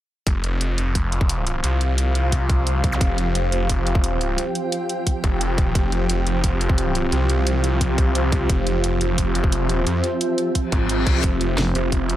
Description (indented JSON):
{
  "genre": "dark technical drum and bass",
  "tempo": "175 BPM",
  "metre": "4/4",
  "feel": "straight",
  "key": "unclear",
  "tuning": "A4 = 440 Hz",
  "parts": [
    { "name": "swarming drone", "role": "sustained chords", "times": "1.3-12.2 s", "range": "F3 to G5", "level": "-27 LUFS", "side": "right 1 dB", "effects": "built-in reverb, sidechain pumping" },
    { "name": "snarling distorted saw bass", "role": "bass", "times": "0.3-12.2 s", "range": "F1 to F2", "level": "-21 LUFS", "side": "equal", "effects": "distortion, overdrive, sidechain pumping" },
    { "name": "drum and bass drum kit", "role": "drums", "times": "0.3-12.2 s", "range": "hi-hat, snare drum", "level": "-27 LUFS", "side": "right 1 dB", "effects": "none" },
    { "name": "electronic kick drum", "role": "drums", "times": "0.3-12.0 s", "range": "none", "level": "-20 LUFS", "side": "equal", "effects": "none" },
    { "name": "granular cloud pad", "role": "texture", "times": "1.2-12.2 s", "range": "F4 to F5", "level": "-27 LUFS", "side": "right 1 dB", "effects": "built-in reverb, sidechain pumping" },
    { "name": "zap and reverse cymbal", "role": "sound effects", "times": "2.9-3.0, 10.7-11.2 s", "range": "none", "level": "-29 LUFS", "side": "left 4 dB", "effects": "none" },
    { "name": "growling FM bass", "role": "bass", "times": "11.6-11.7 s", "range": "F1", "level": "-21 LUFS", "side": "equal", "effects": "none" }
  ],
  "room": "digital ambience",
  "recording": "none",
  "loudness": "-18 LUFS",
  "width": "side -13 dB against mid",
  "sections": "0.3-12.2 A section",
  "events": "reverse cymbal 10.7-11.2",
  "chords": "0.3 F5"
}